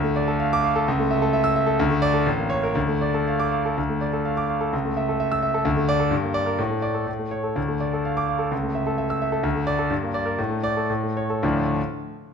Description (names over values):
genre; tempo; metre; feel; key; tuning
classical, virtuoso piano study; 108-132 BPM; 2/4; rubato; D minor; A4 = 435 Hz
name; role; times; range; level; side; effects
clear concert grand piano; solo; 0.0-11.8 s; A1 to E6; -21 LUFS; equal; none
room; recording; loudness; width
moderate recital hall reverb, RT60 1.5 s; dark, warm production; -21 LUFS; side -6 dB against mid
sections
0.0-3.8 A section; 3.8-11.4 B section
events
slowing down 9.0-11.4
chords
0.0 Dm; 0.9 A/C#; 1.8 D5; 2.3 A; 2.8 Dm; 4.7 A/C#; 5.7 D5; 6.1 Gm; 6.6 D5/A; 7.1 A; 7.6 Dm; 8.5 A/C#; 9.4 D5; 9.9 Gm; 10.4 Asus4; 10.9 A; 11.4 Dm